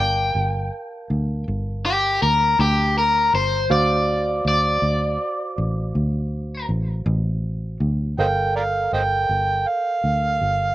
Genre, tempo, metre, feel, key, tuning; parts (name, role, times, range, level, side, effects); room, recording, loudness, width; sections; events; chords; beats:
slow blues; 54 BPM (dotted quarters); 12/8; straight; G minor; A4 = 440 Hz
overdriven semi-hollow guitar; melody; 0.0-6.7 s; G4 to G5; -20 LUFS; left 1 dB; slapback echo
tine electric piano; accompaniment; 0.0-10.7 s; F#4 to A5; -29 LUFS; right 3 dB; overdrive, slapback echo
fingered electric bass; bass; 0.0-10.7 s; G1 to D2; -23 LUFS; equal
overdriven harmonica; second line; 8.2-10.7 s; Bb4 to G5; -20 LUFS; right 2 dB
little or no reverb; recorded outdoors, with no room sound; -19 LUFS; side -15 dB against mid
0.0-8.2 A section; 8.2-10.7 A section
overdriven electric guitar solo 0.0-8.2; harmonica solo 8.2-10.7
0.0 Gm7; 3.7 D7#9; 8.2 Gm7
0.35 1.47 2.59 | 3.71 4.83 5.94 7.06 | 8.18 9.30 10.42